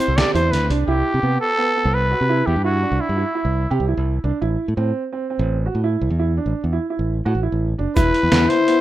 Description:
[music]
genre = progressive instrumental, band music in an uneven meter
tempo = 169 BPM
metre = 5/4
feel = straight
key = unclear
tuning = A4 = 441 Hz
[part]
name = growling trumpet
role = melody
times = 0.0-3.7, 8.0-8.8 s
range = E4 to D5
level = -21 LUFS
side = equal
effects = tape echo
[part]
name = trombone with bucket mute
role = second line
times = 0.0-0.7, 8.0-8.8 s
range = C4 to E4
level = -20 LUFS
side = left 5 dB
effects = none
[part]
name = warm baby grand piano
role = arpeggios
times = 0.0-8.8 s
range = B3 to G4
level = -24 LUFS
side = right 5 dB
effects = none
[part]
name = trip hop sampler-style drum kit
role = drums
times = 0.0-0.8, 8.0-8.8 s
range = hi-hat, kick drum, snare drum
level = -21 LUFS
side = equal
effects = none
[part]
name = tube shaker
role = percussion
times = 0.0-0.6, 8.0-8.4 s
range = none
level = -42 LUFS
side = right 10 dB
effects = none
[part]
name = modern bright fingered electric bass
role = bass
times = 0.1-8.5 s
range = E1 to C3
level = -20 LUFS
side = equal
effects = none
[sound]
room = little or no reverb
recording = rough home demo mix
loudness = -17 LUFS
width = side -14 dB against mid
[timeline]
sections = 0.9-8.8 A section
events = kick and snare drop out 0.7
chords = 0.0 C; 0.9 Cmaj7; 4.4 Am; 8.0 E5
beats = 0.17 0.52 | 0.88 1.23 1.58 1.94 2.29 | 2.65 3.00 3.35 3.71 4.06 | 4.42 4.77 5.13 5.48 5.83 | 6.19 6.54 6.90 7.25 7.61 | 7.96 8.32 8.67

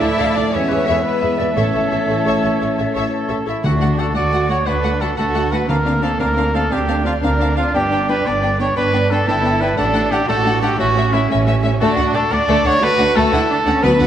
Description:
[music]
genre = cinematic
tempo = 117 BPM (dotted quarters)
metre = 12/8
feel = straight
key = A major, D major from 3.6 s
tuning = A4 = 440 Hz
[part]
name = warm symphonic violin section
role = melody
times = 0.0-14.1 s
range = A4 to G5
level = -25 LUFS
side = left 4 dB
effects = none
[part]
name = silver concert flute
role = second line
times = 0.0-3.3 s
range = A4 to E5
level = -26 LUFS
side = left 2 dB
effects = none
[part]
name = warm studio violin section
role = second line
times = 0.0-14.1 s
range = A3 to A5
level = -26 LUFS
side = left 3 dB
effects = none
[part]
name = warm chamber viola section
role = accompaniment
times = 0.0-14.1 s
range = F#3 to D5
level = -25 LUFS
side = left 1 dB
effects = none
[part]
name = dark French horn section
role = sustained chords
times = 0.0-3.5 s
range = F3 to E4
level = -25 LUFS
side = left 4 dB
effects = none
[part]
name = mellow trombone section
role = sustained chords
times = 0.0-3.4 s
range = A2 to A3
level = -25 LUFS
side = right 3 dB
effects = none
[part]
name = bright trumpet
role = stabs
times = 0.0-14.1 s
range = E4 to E5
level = -19 LUFS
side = right 1 dB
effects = none
[part]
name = clear symphonic double bass section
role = bass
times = 0.0-14.1 s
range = G1 to E2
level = -22 LUFS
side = right 3 dB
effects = none
[part]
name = rich symphonic cello section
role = bass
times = 0.0-14.1 s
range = A3 to F#4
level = -23 LUFS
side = right 2 dB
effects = none
[part]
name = timpani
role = percussion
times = 1.6-6.2, 13.8-14.1 s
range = A2 to D3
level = -23 LUFS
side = left 1 dB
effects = none
[sound]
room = wet concert hall reverb, RT60 1.9 s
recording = none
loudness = -14 LUFS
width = side -10 dB against mid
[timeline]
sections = 0.0-3.6 A section; 3.6-14.1 B section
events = none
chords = 0.0 Dm; 0.5 E; 1.6 A; 3.6 D; 5.7 Bbadd9/D; 7.7 G; 9.8 D/A; 10.8 A; 11.8 D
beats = 0.01 0.52 1.04 | 1.56 2.08 2.60 3.13 | 3.65 4.16 4.67 5.18 | 5.69 6.20 6.72 7.23 | 7.74 8.25 8.76 9.27 | 9.78 10.29 10.79 11.30 | 11.81 12.32 12.82 13.33 | 13.84

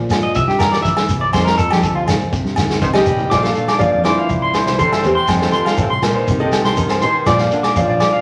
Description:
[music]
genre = highlife guitar band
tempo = 121 BPM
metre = 4/4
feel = straight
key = Bb major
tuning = A4 = 439 Hz
[part]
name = nylon-string guitar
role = accompaniment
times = 0.0-8.2 s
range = F2 to A4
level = -27 LUFS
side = equal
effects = none
[part]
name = fingered electric bass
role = bass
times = 0.0-8.1 s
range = Bb1 to F3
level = -26 LUFS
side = equal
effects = none
[part]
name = vintage drum kit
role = drums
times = 0.1-8.1 s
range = kick drum, snare drum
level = -24 LUFS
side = equal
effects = none
[part]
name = agogo bells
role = percussion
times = 0.1-8.1 s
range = none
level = -27 LUFS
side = equal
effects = none
[part]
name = shekere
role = percussion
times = 0.1-8.1 s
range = none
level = -27 LUFS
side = equal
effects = none
[part]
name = clean electric guitar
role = arpeggios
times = 0.2-8.2 s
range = F4 to D6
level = -21 LUFS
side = equal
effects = none
[part]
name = congas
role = percussion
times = 0.4-7.9 s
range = none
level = -29 LUFS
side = equal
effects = none
[part]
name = picked old ladder-braced acoustic guitar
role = melody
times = 2.8-8.2 s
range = C4 to F5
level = -21 LUFS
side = equal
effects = none
[part]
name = raspy tenor saxophone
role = second line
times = 2.8-8.2 s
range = C3 to A3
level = -30 LUFS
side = equal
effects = none
[sound]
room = wet large studio reverb, RT60 1.1 s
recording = vinyl crackle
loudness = -16 LUFS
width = mono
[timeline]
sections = 0.0-3.3 A section; 3.3-8.2 B section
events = clean electric guitar solo 0.0-3.3; drum fill 2.9-3.3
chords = 0.4 C; 1.3 F; 2.3 Cm; 3.3 Bb; 4.3 C; 5.3 F; 6.3 Cm; 7.3 Bb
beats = 0.36 0.85 | 1.34 1.83 2.33 2.82 | 3.31 3.81 4.30 4.79 | 5.29 5.79 6.28 6.78 | 7.28 7.77

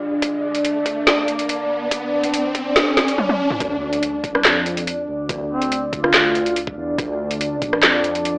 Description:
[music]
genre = deep dubstep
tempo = 142 BPM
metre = 4/4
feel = half-time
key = D minor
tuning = A4 = 440 Hz
[part]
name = deep dark ambient pad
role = sustained chords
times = 0.0-8.4 s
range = D4 to D5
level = -22 LUFS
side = equal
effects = chorus, built-in reverb
[part]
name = riser and sub drop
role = sound effects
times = 0.0-5.3 s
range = none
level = -25 LUFS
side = equal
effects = none
[part]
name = electronic kick drum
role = drums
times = 0.2-7.7 s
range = none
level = -26 LUFS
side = equal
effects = overdrive, high-pass filter on kick
[part]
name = garage drum kit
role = drums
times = 0.2-8.3 s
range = handclaps, hi-hat, rim click, snare drum, toms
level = -17 LUFS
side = equal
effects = overdrive
[part]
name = dark detuned saw bass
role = bass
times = 3.6-8.4 s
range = D2 to F2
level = -28 LUFS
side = equal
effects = none
[part]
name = mellow duduk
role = melody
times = 4.3-6.6 s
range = C4 to F4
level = -24 LUFS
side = equal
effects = dub echo
[sound]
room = moderate digital room reverb, RT60 0.9 s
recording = dry, gritty hardware recording, AM radio sound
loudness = -17 LUFS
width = side -27 dB against mid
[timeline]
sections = 0.0-3.6 A section; 3.6-8.4 B section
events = build-up 0.0-3.6; riser 0.0-3.6; break 3.2-3.6; drum fill 3.2-3.6; drop 3.6-8.4; impact 3.6-5.3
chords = 0.0 N.C.; 3.6 Dm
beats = | 0.22 0.65 1.07 1.49 | 1.91 2.34 2.76 3.18 | 3.60 4.03 4.45 4.87 | 5.29 5.72 6.14 6.56 | 6.98 7.41 7.83 8.25

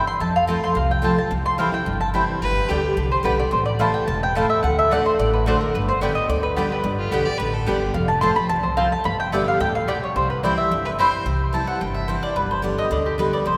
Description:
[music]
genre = bluegrass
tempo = 217 BPM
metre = 4/4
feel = straight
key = unclear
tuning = A4 = 439 Hz
[part]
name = mandolin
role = melody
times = 0.0-11.0 s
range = G4 to C6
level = -26 LUFS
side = equal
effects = none
[part]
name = picked steel-string acoustic guitar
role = accompaniment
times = 0.0-13.6 s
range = E2 to G4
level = -26 LUFS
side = equal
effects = none
[part]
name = mandolin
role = stabs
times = 0.0-13.6 s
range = A3 to A5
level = -28 LUFS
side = equal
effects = none
[part]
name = upright bass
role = bass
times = 0.2-13.6 s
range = E1 to F2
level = -29 LUFS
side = equal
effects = none
[part]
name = clear fiddle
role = second line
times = 2.4-3.0, 7.0-7.9, 10.9-11.2 s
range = F4 to D5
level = -33 LUFS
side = equal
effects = none
[sound]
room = wet cathedral reverb, RT60 5.3 s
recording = recorded in a church or concert hall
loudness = -21 LUFS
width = mono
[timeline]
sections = 0.0-2.4 A section; 2.4-11.3 B section; 11.3-13.6 C section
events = mandolin solo 11.3-13.6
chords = 0.2 F; 1.3 C; 2.4 G; 3.5 Am; 4.6 D; 5.7 G; 7.9 F; 9.1 G; 10.2 C; 12.4 G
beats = | 0.21 0.48 0.76 1.04 | 1.31 1.59 1.87 2.15 | 2.42 2.70 2.98 3.25 | 3.53 3.80 4.08 4.36 | 4.63 4.91 5.19 5.46 | 5.74 6.01 6.29 6.57 | 6.84 7.12 7.40 7.67 | 7.95 8.23 8.50 8.78 | 9.05 9.33 9.61 9.88 | 10.16 10.43 10.71 10.98 | 11.26 11.54 11.81 12.09 | 12.36 12.64 12.92 13.19 | 13.47

